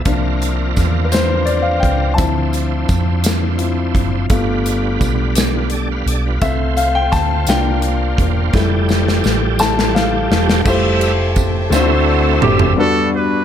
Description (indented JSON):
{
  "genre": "slow gospel",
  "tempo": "57 BPM (dotted quarters)",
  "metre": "6/8",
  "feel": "straight",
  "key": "F major",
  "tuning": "A4 = 440 Hz",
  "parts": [
    { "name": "warm baby grand piano", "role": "accompaniment", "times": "0.0-13.4 s", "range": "G2 to A5", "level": "-18 LUFS", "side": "left 4 dB", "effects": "none" },
    { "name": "bright tonewheel organ", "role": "sustained chords", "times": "0.0-12.7 s", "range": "E3 to F5", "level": "-22 LUFS", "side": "right 4 dB", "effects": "slow rotary speaker, overdrive, chorus vibrato" },
    { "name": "hollow-body short-scale fingered electric bass", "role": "bass", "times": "0.0-12.7 s", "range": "E1 to F2", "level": "-18 LUFS", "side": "right 1 dB", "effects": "none" },
    { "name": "modern studio drum kit", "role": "drums", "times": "0.1-12.8 s", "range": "crash cymbal, hi-hat, kick drum, ride cymbal, snare drum, toms", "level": "-19 LUFS", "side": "equal", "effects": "none" },
    { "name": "tambourine", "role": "percussion", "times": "0.1-12.0 s", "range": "none", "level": "-30 LUFS", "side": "right 8 dB", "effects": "none" },
    { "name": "clear studio string section", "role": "sustained chords", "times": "10.7-12.8 s", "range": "C5 to A5", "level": "-27 LUFS", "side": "right 2 dB", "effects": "none" },
    { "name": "warm horn section", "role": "melody", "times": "12.4-13.4 s", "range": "D4 to B4", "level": "-17 LUFS", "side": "right 2 dB", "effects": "none" }
  ],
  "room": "light reverb, studio reverb",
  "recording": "none",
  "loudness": "-13 LUFS",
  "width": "side -9 dB against mid",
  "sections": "0.0-10.7 A section; 10.7-12.8 B section",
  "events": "grand piano solo 0.0-10.7; drum fill 8.5-10.7, 11.7-12.8; tonewheel organ solo 10.7-12.8",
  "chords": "0.1 C9sus4; 2.2 Dm9; 4.3 G7; 6.4 F/C; 7.5 C9sus4; 8.5 Fmaj9; 11.7 D7; 12.8 Gmaj7",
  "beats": "| 0.06 1.12 | 2.18 3.24 | 4.30 5.36 | 6.42 7.48 | 8.54 9.60 | 10.66 11.72 | 12.77"
}